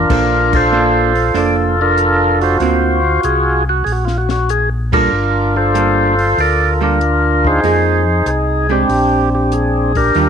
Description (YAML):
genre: soul jazz organ trio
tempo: 95 BPM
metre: 4/4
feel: swing 69% on 8ths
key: Bb major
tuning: A4 = 440 Hz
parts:
  - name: percussive tonewheel organ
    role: melody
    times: 0.0-10.3 s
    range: C4 to D5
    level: -13 LUFS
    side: equal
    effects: slow rotary speaker
  - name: mellow tonewheel organ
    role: bass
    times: 0.0-10.3 s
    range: F1 to F2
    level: -18 LUFS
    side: left 1 dB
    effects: overdrive, chorus vibrato, slow rotary speaker
  - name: archtop guitar, miked and amplified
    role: accompaniment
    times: 0.1-10.3 s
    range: D3 to C5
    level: -20 LUFS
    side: right 11 dB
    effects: none
  - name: compact cocktail drum kit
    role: drums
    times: 0.1-10.3 s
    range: crash cymbal, hi-hat, kick drum, snare drum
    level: -23 LUFS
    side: left 3 dB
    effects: none
room: moderate spring reverb, RT60 1.4 s, studio ambience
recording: 1960s-style stereo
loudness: -12 LUFS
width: side -7 dB against mid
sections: 0.1-10.3 A section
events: band accent 0.4-0.7, 4.8-5.1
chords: 0.1 Bbmaj9; 2.6 D7alt; 5.1 Gm9; 7.6 Fm11; 8.9 Bb69